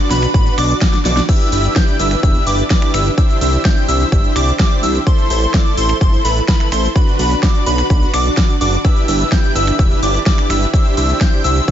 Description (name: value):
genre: EDM, festival progressive house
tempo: 127 BPM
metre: 4/4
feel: straight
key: G major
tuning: A4 = 441 Hz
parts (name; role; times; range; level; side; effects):
- plucky unison lead; arpeggios; 0.0-11.7 s; B5 to G6; -20 LUFS; equal; sidechain pumping, ping-pong delay
- dense compressed supersaw; riff; 0.0-11.7 s; D4 to G5; -19 LUFS; right 1 dB; sidechain pumping, ping-pong delay
- fat analog bass; bass; 0.1-11.7 s; E1 to C2; -17 LUFS; equal; tube saturation, sidechain pumping
- big-room dance drum kit; drums; 0.1-11.7 s; crash cymbal, finger snaps, hi-hat, shaker, snare drum; -22 LUFS; equal; overdrive
- electronic kick drum; drums; 0.3-11.7 s; none; -14 LUFS; equal; overdrive
room: digital ambience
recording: nothing above 7.7 kHz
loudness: -12 LUFS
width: side -10 dB against mid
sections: 0.0-11.7 A section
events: drum fill 0.9-1.3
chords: 0.0 Bm; 1.3 G6; 3.2 Cadd9; 5.1 Am; 7.0 Bm; 8.8 G6; 10.7 Cadd9